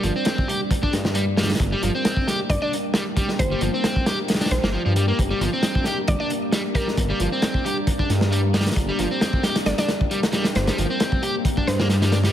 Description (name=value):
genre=breakbeat, breaks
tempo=134 BPM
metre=4/4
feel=swing 54% on 16ths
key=G minor pentatonic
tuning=A4 = 440 Hz
part: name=mallet-like synth pluck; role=melody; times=0.0-12.0 s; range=Bb4 to D5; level=-30 LUFS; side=equal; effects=chorus, small speaker sound, ping-pong delay
part: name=deep dark ambient pad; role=sustained chords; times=0.0-12.3 s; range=G3 to G5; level=-28 LUFS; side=equal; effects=chorus, built-in reverb, sidechain pumping
part: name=overdriven semi-hollow guitar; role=riff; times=0.0-12.3 s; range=F3 to G4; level=-26 LUFS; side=equal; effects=ping-pong delay
part: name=dark detuned saw bass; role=bass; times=0.0-12.3 s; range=G1 to G2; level=-22 LUFS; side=equal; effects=none
part: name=crunchy breakbeat drum kit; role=drums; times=0.0-12.3 s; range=hi-hat, kick drum, snare drum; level=-23 LUFS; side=equal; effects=none
room=light reverb, studio reverb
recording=heavily compressed radio sound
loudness=-19 LUFS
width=side -11 dB against mid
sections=0.0-12.3 A section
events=none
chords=0.0 Gm